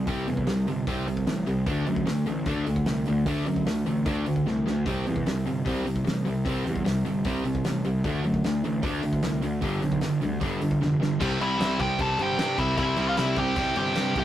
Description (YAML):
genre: punk rock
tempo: 151 BPM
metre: 4/4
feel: straight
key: C major from 11.2 s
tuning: A4 = 439 Hz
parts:
  - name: distorted electric guitar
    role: riff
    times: 0.0-14.2 s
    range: G2 to D4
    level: -28 LUFS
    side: right 4 dB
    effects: distortion
  - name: overdriven electric guitar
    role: riff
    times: 0.0-14.2 s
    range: G2 to D4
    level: -31 LUFS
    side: left 6 dB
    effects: none
  - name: fuzz picked electric bass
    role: bass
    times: 0.0-14.2 s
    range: F1 to G2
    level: -30 LUFS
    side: equal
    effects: overdrive
  - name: loose indie drum kit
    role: drums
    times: 0.1-14.2 s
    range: crash cymbal, hi-hat, kick drum, snare drum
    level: -33 LUFS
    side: equal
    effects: none
  - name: high-gain distorted guitar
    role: riff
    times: 11.2-14.2 s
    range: C3 to C4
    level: -32 LUFS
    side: equal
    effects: distortion
  - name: nasal lead guitar with a parked wah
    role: melody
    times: 11.4-14.2 s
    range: E4 to A5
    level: -26 LUFS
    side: equal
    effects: overdrive
room: light reverb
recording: rough rehearsal-room recording, tube saturation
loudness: -24 LUFS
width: side -12 dB against mid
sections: 0.0-11.2 A section; 11.2-14.2 B section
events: drum fill 4.5-4.9, 10.8-11.2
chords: 0.0 C5; 1.7 D5; 4.9 C5; 8.0 D5; 9.6 G5; 11.2 C